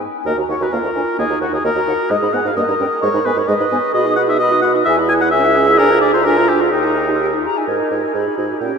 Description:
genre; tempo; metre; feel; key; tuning
quick classical-period movement for wind quintet; 130 BPM; 2/4; straight; Eb minor, G# minor from 3.9 s; A4 = 438 Hz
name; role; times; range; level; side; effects
concert flute; melody; 0.0-8.8 s; D#5 to D#6; -24 LUFS; left 6 dB; none
mellow French horn; accompaniment; 0.0-8.8 s; Ab3 to G#4; -23 LUFS; equal; none
warm oboe; second line; 0.3-8.8 s; D#4 to G#5; -17 LUFS; left 2 dB; none
mellow clarinet; accompaniment; 0.3-8.8 s; Eb4 to Cb5; -20 LUFS; right 6 dB; none
warm bassoon; bass; 0.3-8.7 s; C#2 to B2; -21 LUFS; right 4 dB; none
room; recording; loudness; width
wet huge ambient reverb, RT60 8.2 s; in a vast, echoing space; -13 LUFS; side -6 dB against mid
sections
0.3-7.7 A section; 7.7-8.8 B section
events
none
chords
0.3 Ebm; 0.7 Bb/D; 1.2 Ebm; 2.1 Abm; 2.6 Eb/G; 3.0 Abm; 3.9 B; 4.9 E; 5.3 C#m; 5.8 A#7/D; 6.7 D#; 7.7 G#m

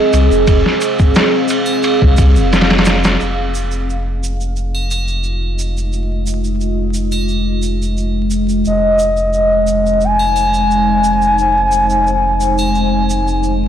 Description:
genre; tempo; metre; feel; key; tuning
trip hop; 88 BPM; 4/4; straight; F minor; A4 = 445 Hz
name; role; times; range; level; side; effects
deep dark ambient pad; sustained chords; 0.0-13.7 s; Ab3 to F5; -18 LUFS; equal; chorus, built-in reverb
warm sub bass; bass; 0.1-13.7 s; F1 to C2; -17 LUFS; equal; none
trip hop sampler-style drum kit; drums; 0.1-3.2 s; kick drum, ride cymbal, snare drum; -14 LUFS; equal; vintage 12-bit sampler grit
tube shaker and triangle; percussion; 0.1-13.6 s; none; -27 LUFS; right 4 dB; none
pure breathy sine lead; melody; 8.7-13.4 s; Eb5 to Ab5; -13 LUFS; left 1 dB; chorus, dub echo
room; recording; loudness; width
light reverb, digital ambience; blown-out, overdriven recording, vinyl crackle, overdrive; -12 LUFS; side -10 dB against mid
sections
0.0-3.2 A section; 3.2-13.7 B section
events
filter sweep on ambient pad 3.2-13.7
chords
0.0 Fm7

